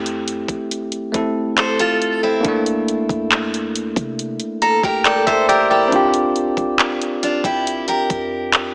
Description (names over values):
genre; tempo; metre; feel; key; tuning
contemporary R&B; 69 BPM; 4/4; straight; unclear; A4 = 439 Hz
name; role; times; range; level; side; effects
barky tine electric piano; accompaniment; 0.0-8.7 s; A3 to Bb5; -21 LUFS; equal; none
clean 808-style bass; bass; 0.0-8.7 s; F1 to C3; -35 LUFS; equal; none
trap drum kit; drums; 0.1-8.7 s; handclaps, hi-hat, kick drum; -23 LUFS; equal; none
picked steel-string acoustic guitar; arpeggios; 1.6-8.7 s; C4 to C5; -22 LUFS; equal; tape echo
room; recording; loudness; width
moderate concert hall reverb, RT60 2.2 s; small speaker sound; -18 LUFS; mono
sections
0.0-8.7 A section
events
tine electric piano fill 4.2-5.9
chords
0.0 Fmaj7; 2.4 C13; 5.9 Bb6